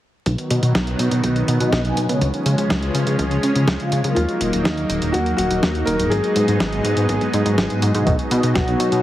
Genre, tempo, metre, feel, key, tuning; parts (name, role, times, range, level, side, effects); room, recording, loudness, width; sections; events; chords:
italo disco; 123 BPM; 4/4; straight; A4 = 440 Hz
lush unison pad; sustained chords; 0.3-9.0 s; D#3 to Ab4; -23 LUFS; equal; chorus
chorused synth bass; bass; 0.3-9.0 s; Eb1 to Db3; -21 LUFS; equal
dusty soul sampler-style drum kit; drums; 0.3-9.0 s; hi-hat, snare drum; -25 LUFS; equal
electronic kick drum; drums; 0.3-8.7 s; -26 LUFS; equal
mellow synth brass; stabs; 0.5-9.0 s; Ab2 to Ab5; -24 LUFS; left 1 dB; chorus
warm grand piano; melody; 4.1-9.0 s; Eb4 to Bb4; -23 LUFS; left 1 dB; ping-pong delay
moderate plate reverb, RT60 2.2 s; heavily compressed radio sound, multiband compression, vinyl crackle; -17 LUFS; side -14 dB against mid
0.3-8.1 A section
filter sweep on analog synth bass 0.3-8.1; kick drops out 7.6-8.1
0.3 B; 2.2 Db; 4.2 Ebm; 6.1 Abm7; 8.1 B